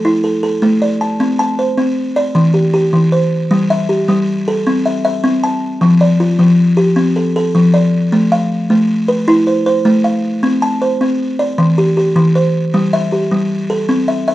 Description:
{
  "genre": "southern african traditional",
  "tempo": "104 BPM (dotted quarters)",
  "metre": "12/8",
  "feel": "straight",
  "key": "unclear",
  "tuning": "A4 = 438 Hz",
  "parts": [
    { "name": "buzzing kalimba", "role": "solo", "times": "0.0-14.3 s", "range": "E3 to A5", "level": "-11 LUFS", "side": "equal", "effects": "none" }
  ],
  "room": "moderate studio reverb, RT60 0.5 s",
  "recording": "minimal, uncompressed stereo recording",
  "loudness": "-11 LUFS",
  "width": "side -15 dB against mid",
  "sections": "0.0-1.2 A section; 1.2-14.3 B section",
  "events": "none",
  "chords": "0.0 A5; 1.2 Amadd11/C; 2.4 Em; 3.5 Emadd11/G; 4.7 C; 5.8 F; 8.1 Am; 10.4 Amadd11/C; 11.6 Em; 12.7 Emadd11/G"
}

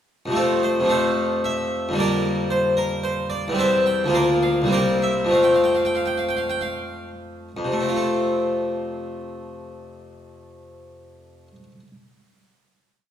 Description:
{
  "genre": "classical, baroque-style suite movement for harpsichord",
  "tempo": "72-114 BPM",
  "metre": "3/4",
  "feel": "rubato",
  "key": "F major",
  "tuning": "A4 = 438 Hz",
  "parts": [
    { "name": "harpsichord", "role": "solo", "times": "0.3-11.9 s", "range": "C2 to A5", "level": "-20 LUFS", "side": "equal", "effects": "none" }
  ],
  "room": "wet scoring stage reverb, RT60 1.7 s",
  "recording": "heard from further back in the room",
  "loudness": "-19 LUFS",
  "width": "side -9 dB against mid",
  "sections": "0.3-7.6 A section; 7.6-12.5 final chord",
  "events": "slowing down 2.8-7.6",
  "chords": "0.3 F; 2.0 Gm7/F; 3.6 C/E; 4.1 Bb/D; 4.7 C7; 5.3 F"
}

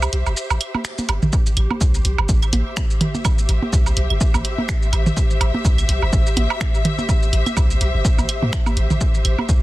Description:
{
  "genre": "minimal techno",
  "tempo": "125 BPM",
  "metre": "4/4",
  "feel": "swing 57% on 16ths",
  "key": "A minor",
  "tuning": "A4 = 440 Hz",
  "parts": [
    { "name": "punchy sub bass", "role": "bass", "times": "0.0-9.6 s", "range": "G1 to A2", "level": "-20 LUFS", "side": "equal", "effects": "sidechain pumping" },
    { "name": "punchy analog drum machine", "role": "drums", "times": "0.0-9.6 s", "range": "finger snaps, hi-hat, shaker", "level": "-27 LUFS", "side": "right 1 dB", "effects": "soft clipping on snare" },
    { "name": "electronic woodblock, claves and toms", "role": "percussion", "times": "0.0-9.5 s", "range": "none", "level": "-23 LUFS", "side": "right 3 dB", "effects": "digital delay" },
    { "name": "warm studio string section", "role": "texture", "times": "0.0-9.6 s", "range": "G4 to E5", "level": "-27 LUFS", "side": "left 2 dB", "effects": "sidechain pumping" },
    { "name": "electronic kick drum", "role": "drums", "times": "1.3-9.6 s", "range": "none", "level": "-18 LUFS", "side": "equal", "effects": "none" }
  ],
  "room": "digital ambience",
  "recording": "dense, heavily limited modern master",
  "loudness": "-16 LUFS",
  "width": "side -17 dB against mid",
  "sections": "0.0-1.3 A section; 1.3-9.6 B section",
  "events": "build-up 0.0-1.3; drop 1.3-9.6",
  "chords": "0.0 Am"
}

